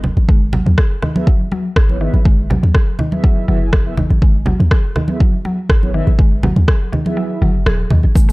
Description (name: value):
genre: afro house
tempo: 122 BPM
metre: 4/4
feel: swing 53% on 16ths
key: unclear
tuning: A4 = 439 Hz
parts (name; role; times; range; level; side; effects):
- warm 808-style bass; bass; 0.0-8.3 s; D#1 to D#2; -15 LUFS; equal; sidechain pumping
- congas; percussion; 0.0-8.1 s; none; -21 LUFS; right 1 dB; none
- mallet-like synth pluck; arpeggios; 0.3-8.3 s; D#3 to G#4; -22 LUFS; equal; chorus, sidechain pumping, analog delay
- afro-pop drum kit; drums; 0.3-8.3 s; rim click, toms; -23 LUFS; equal; none
- electronic kick drum; drums; 0.3-8.3 s; none; -13 LUFS; equal; none
- mellow synth brass; stabs; 1.2-7.4 s; B3 to G#5; -27 LUFS; right 2 dB; chorus, sidechain pumping, analog delay
- dark analog pad; sustained chords; 8.2-8.3 s; G#3 to A#4; -29 LUFS; equal; none
- egg shaker; percussion; 8.2-8.3 s; none; -33 LUFS; left 3 dB; none
room: digital ambience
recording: dry, gritty hardware recording, cassette tape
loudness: -12 LUFS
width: side -23 dB against mid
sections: 0.0-8.3 A section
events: kick drops out 7.2-8.2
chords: 0.3 E